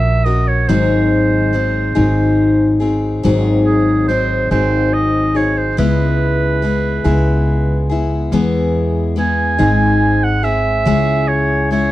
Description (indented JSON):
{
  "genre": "acoustic folk duo or small band",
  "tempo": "47 BPM (dotted quarters)",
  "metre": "6/8",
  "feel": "straight",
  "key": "unclear",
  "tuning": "A4 = 441 Hz",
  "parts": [
    { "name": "bright clarinet", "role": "second line", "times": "0.0-11.9 s", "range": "G#4 to G#5", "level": "-19 LUFS", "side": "right 4 dB", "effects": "none" },
    { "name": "picked steel-string acoustic guitar", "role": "accompaniment", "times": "0.0-11.9 s", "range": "G#2 to A#4", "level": "-16 LUFS", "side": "left 3 dB", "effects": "none" },
    { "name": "upright bass", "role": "bass", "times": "0.0-11.9 s", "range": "G#1 to E2", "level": "-17 LUFS", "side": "right 1 dB", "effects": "none" }
  ],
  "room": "small room ambience",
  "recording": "dry, close 1970s-style studio recording",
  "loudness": "-13 LUFS",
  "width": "side -15 dB against mid",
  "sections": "0.0-11.9 A section",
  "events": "clarinet solo 0.0-11.9",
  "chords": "0.0 F#/A#; 0.7 G#7; 5.8 C#m7; 8.3 E; 9.6 G#; 10.9 C#m",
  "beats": "| 0.70 1.97 | 3.25 4.52 | 5.79 7.06 | 8.33 9.61 | 10.88"
}